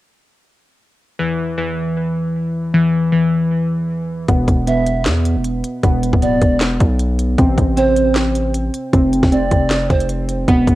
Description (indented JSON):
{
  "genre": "hip hop, trap",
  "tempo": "155 BPM",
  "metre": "4/4",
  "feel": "half-time",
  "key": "unclear",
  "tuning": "A4 = 442 Hz",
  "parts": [
    { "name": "glassy digital keys", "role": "arpeggios", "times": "1.2-10.8 s", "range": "E3 to C4", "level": "-17 LUFS", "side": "equal", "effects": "chorus, low-pass filter, cassette tape, tape echo" },
    { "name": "distorted 808-style bass", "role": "bass", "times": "4.3-10.8 s", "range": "D1 to E2", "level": "-18 LUFS", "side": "equal", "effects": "distortion" },
    { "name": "trap drum kit", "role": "drums", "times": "4.3-10.8 s", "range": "handclaps, hi-hat, kick drum, snare drum", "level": "-18 LUFS", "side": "equal", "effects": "cassette tape" },
    { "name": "mellow polished pan flute", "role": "second line", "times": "4.7-10.1 s", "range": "C5 to E5", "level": "-20 LUFS", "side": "right 3 dB", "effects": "cassette tape, tape echo" }
  ],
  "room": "little or no reverb",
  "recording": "home recording on cassette",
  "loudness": "-14 LUFS",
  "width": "side -16 dB against mid",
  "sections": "1.2-4.3 A section; 4.3-10.8 B section",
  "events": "filter sweep on synth keys 4.3-10.5",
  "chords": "1.2 N.C.; 4.3 E5; 7.4 Am; 8.9 F5"
}